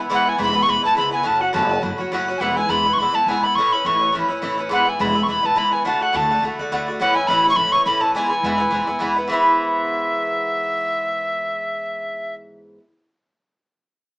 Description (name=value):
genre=celtic folk, Celtic reel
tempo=209 BPM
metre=4/4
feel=swing 55% on 8ths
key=E mixolydian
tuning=A4 = 439 Hz
part: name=Irish bouzouki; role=accompaniment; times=0.0-12.8 s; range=G#2 to F#4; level=-21 LUFS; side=equal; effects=none
part: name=upright bass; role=bass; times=0.0-12.4 s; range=E1 to E2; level=-29 LUFS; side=equal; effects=none
part: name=tin whistle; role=melody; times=0.1-12.3 s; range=E5 to C#6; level=-19 LUFS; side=equal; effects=none
room=wet studio reverb, RT60 0.6 s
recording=band playing live in one room, small speaker sound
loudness=-17 LUFS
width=side -28 dB against mid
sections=0.1-9.3 A section; 9.3-11.6 B section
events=none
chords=0.1 E; 1.3 F#m; 2.4 E; 3.6 A; 4.7 E; 5.9 D; 7.0 A; 8.2 E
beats=| 0.10 0.39 0.68 0.97 | 1.26 1.55 1.83 2.12 | 2.41 2.70 2.99 3.27 | 3.56 3.85 4.14 4.42 | 4.71 5.00 5.29 5.57 | 5.86 6.15 6.43 6.72 | 7.01 7.29 7.58 7.87 | 8.15 8.44 8.73 9.01 | 9.30 9.59 9.87 10.16 | 10.44 10.73 11.01 11.30